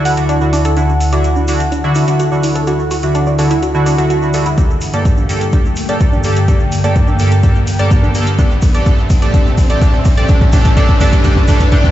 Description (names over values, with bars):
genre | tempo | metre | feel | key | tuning
progressive house | 126 BPM | 4/4 | straight | D major | A4 = 438 Hz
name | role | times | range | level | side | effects
evolving wavetable pad | sustained chords | 0.0-11.9 s | D2 to G5 | -17 LUFS | equal | phaser, built-in reverb, sidechain pumping
chorused polysynth | stabs | 0.0-11.9 s | G2 to A4 | -16 LUFS | right 1 dB | sidechain pumping, ping-pong delay
riser and swell | sound effects | 1.7-11.9 s | none | -26 LUFS | equal | none
analog pluck | arpeggios | 0.1-11.8 s | D4 to F#5 | -21 LUFS | equal | chorus, cassette tape, sidechain pumping, ping-pong delay
electronic hi-hat | drums | 0.1-11.8 s | none | -29 LUFS | left 1 dB | overdrive
maracas | percussion | 0.1-11.9 s | none | -34 LUFS | right 3 dB | none
electronic kick drum | drums | 4.6-11.9 s | none | -11 LUFS | equal | none
room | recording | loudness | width
light reverb | played on a big sound system in a bare room, stone room reverb, nothing above 7.9 kHz | -10 LUFS | side -13 dB against mid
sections
0.0-11.9 A section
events
build-up 0.0-11.9; filter sweep on synth pluck 0.0-11.9; filter sweep on analog polysynth 0.0-11.9; filter sweep on ambient pad 0.0-11.9; riser 1.7-11.9; drum fill 4.6-11.9; swell 11.2-11.9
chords
0.0 Dadd9; 4.6 Gmadd9; 8.4 Asus4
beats
0.29 | 0.77 1.24 1.72 2.20 | 2.67 3.15 3.62 4.10 | 4.58 5.05 5.53 6.01 | 6.48 6.96 7.43 7.91 | 8.39 8.86 9.34 9.82 | 10.29 10.77 11.24 11.72